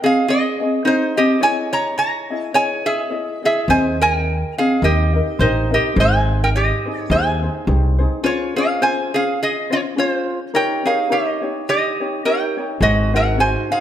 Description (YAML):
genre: Hawaiian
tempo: 105 BPM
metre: 4/4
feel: swing 56% on 8ths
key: Ab major, Db major from 8.2 s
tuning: A4 = 444 Hz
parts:
  - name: lap resonator guitar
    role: melody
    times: 0.0-13.8 s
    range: Eb4 to Bb5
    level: -18 LUFS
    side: right 1 dB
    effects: none
  - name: ukulele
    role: accompaniment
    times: 0.0-13.8 s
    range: C4 to Eb5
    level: -22 LUFS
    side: left 2 dB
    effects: none
  - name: upright bass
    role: bass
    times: 3.7-8.0, 12.8-13.5 s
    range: Ab1 to Eb2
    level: -18 LUFS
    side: equal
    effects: none
room: moderate recital hall reverb, RT60 1.7 s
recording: none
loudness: -16 LUFS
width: side -10 dB against mid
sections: 0.0-8.2 A section; 8.2-13.8 B section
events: none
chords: 0.0 Ab; 1.4 Dbmadd9; 3.7 Ab/Eb; 4.8 Eb; 6.0 Abmaj7; 8.2 Dbmaj7; 10.5 Eb7; 12.8 Ab7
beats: 0.28 0.84 | 1.41 1.98 2.55 3.12 | 3.69 4.25 4.82 5.39 | 5.96 6.53 7.10 7.67 | 8.24 8.81 9.38 9.95 | 10.52 11.09 11.66 12.23 | 12.80 13.38